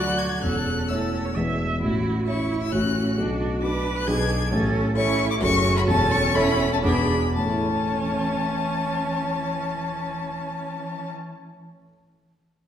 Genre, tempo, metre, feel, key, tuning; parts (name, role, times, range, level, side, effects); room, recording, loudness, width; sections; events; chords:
quick classical-period movement for piano quartet; 113-136 BPM; 3/4; rubato; A major; A4 = 440 Hz
rich violin; melody; 0.0-11.1 s; A5 to G#6; -28 LUFS; left 5 dB
rich cello; second line; 0.0-11.1 s; E3 to B4; -29 LUFS; right 3 dB
dark concert grand piano; accompaniment; 0.0-12.0 s; E1 to A5; -23 LUFS; equal
rich viola; accompaniment; 0.0-11.1 s; C#4 to E5; -30 LUFS; right 2 dB
wet recital hall reverb, RT60 1.7 s; recorded in a church or concert hall; -21 LUFS; side -9 dB against mid
0.0-7.4 A section; 7.4-10.3 B section
slowing down 3.8-7.4
0.4 A/E; 1.4 E; 1.8 A; 2.7 F#m/A; 3.2 Bm; 4.1 G#dim/B; 4.5 A; 5.4 F#m; 5.9 A/E; 6.8 E7; 7.4 A